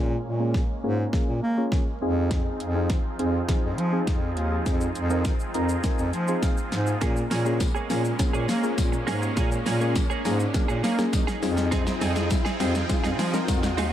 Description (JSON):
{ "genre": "dance-pop", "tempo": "102 BPM", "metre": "4/4", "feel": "straight", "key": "Bb dorian", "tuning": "A4 = 440 Hz", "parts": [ { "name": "soft electric-piano-like synth keys", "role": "accompaniment", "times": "0.0-13.6 s", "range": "Bb3 to Bb5", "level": "-30 LUFS", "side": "left 2 dB", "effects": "chorus, sidechain pumping, low-pass filter" }, { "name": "supersaw pad", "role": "sustained chords", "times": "0.0-13.9 s", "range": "F3 to G5", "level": "-33 LUFS", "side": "right 1 dB", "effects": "sidechain pumping, low-pass filter" }, { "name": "warm bass clarinet", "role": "bass", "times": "0.0-13.9 s", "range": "Eb2 to Bb3", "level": "-26 LUFS", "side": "equal", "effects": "sidechain pumping" }, { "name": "riser", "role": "sound effects", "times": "2.0-13.9 s", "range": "none", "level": "-38 LUFS", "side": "equal", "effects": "none" }, { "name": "pop drum kit", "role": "drums", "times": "0.5-13.9 s", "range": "hi-hat, kick drum, shaker, snare drum", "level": "-26 LUFS", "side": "equal", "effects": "none" }, { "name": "direct-recorded clean electric guitar", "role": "riff", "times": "7.0-13.9 s", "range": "Bb3 to Ab4", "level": "-32 LUFS", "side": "right 6 dB", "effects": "analog chorus, low-pass filter" }, { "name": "tambourine", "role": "percussion", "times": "7.3-13.6 s", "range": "none", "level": "-43 LUFS", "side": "left 9 dB", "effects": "none" } ], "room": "little or no reverb", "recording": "none", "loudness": "-22 LUFS", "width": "side -11 dB against mid", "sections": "0.0-13.9 A section", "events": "build-up 0.0-13.9; drum fill 0.0-13.9; filter sweep 0.0-13.9; riser 2.0-13.9; synth keys fill 5.3-7.0", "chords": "0.0 Bbm7; 2.0 Fm7; 7.0 Bbm7; 11.4 Fm7" }